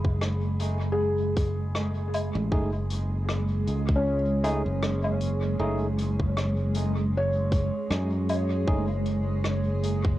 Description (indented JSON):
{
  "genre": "ambient dub",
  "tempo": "78 BPM",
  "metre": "4/4",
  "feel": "swing 56% on 16ths",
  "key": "F# dorian",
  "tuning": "A4 = 440 Hz",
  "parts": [
    { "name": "granular cloud pad", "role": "sustained chords", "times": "0.0-10.2 s", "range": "G#3", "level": "-32 LUFS", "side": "right 2 dB", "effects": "built-in reverb, cassette tape" },
    { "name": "felt-muted upright piano", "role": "arpeggios", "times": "0.0-10.2 s", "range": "C#4 to B5", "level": "-32 LUFS", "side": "left 1 dB", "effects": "cassette tape, dub echo" },
    { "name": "modern bright fingered electric bass", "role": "bass", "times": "0.0-10.2 s", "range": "F#1 to F#2", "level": "-27 LUFS", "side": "equal", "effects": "none" },
    { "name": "electronic kick drum", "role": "drums", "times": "0.0-10.2 s", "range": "none", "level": "-26 LUFS", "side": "equal", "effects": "cassette tape" },
    { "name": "soft-mallet drum kit", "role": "drums", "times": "0.2-10.0 s", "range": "hi-hat, rim click, woodblock", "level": "-35 LUFS", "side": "left 1 dB", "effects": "cassette tape, dub echo" },
    { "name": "barky tine electric piano", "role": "stabs", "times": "2.5-8.8 s", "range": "A3 to G#4", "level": "-36 LUFS", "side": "right 1 dB", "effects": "overdrive, cassette tape, dub echo" }
  ],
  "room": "light reverb",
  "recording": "home recording on cassette",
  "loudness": "-24 LUFS",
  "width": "side -15 dB against mid",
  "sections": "0.0-10.2 A section",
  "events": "none",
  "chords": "0.0 F#sus2",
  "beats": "0.21 0.98 1.75 | 2.52 3.29 4.06 4.83 | 5.60 6.37 7.14 7.91 | 8.67 9.44"
}